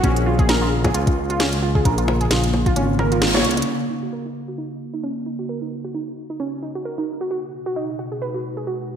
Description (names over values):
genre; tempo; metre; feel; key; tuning
IDM; 132 BPM; 4/4; swing 56% on 16ths; Eb minor; A4 = 442 Hz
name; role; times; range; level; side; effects
warbly tape-like pad; sustained chords; 0.0-9.0 s; B2 to G#4; -28 LUFS; left 1 dB; chorus, built-in reverb
warbly dusty pluck; arpeggios; 0.0-8.8 s; Db4 to Db5; -25 LUFS; right 2 dB; chorus, digital delay
dark detuned saw bass; bass; 0.0-3.6 s; Ab1 to Db2; -21 LUFS; equal; tube saturation
electronic kick drum; drums; 0.0-2.7 s; none; -20 LUFS; equal; none
organic electronic drum kit; drums; 0.0-3.7 s; bongos, hi-hat, snare drum; -23 LUFS; left 1 dB; low-pass filter on hats, low-pass filter on snare, low-pass filter on perc, digital delay
room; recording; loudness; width
moderate lush hall reverb, RT60 1.8 s; bright 1980s-style digital production; -19 LUFS; side -8 dB against mid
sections
0.0-3.7 A section; 3.7-9.0 B section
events
band accent 3.2; drum fill 3.4; filter sweep on synth pluck 3.7-9.0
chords
0.0 Bbm7; 3.7 Ebm7; 7.3 B6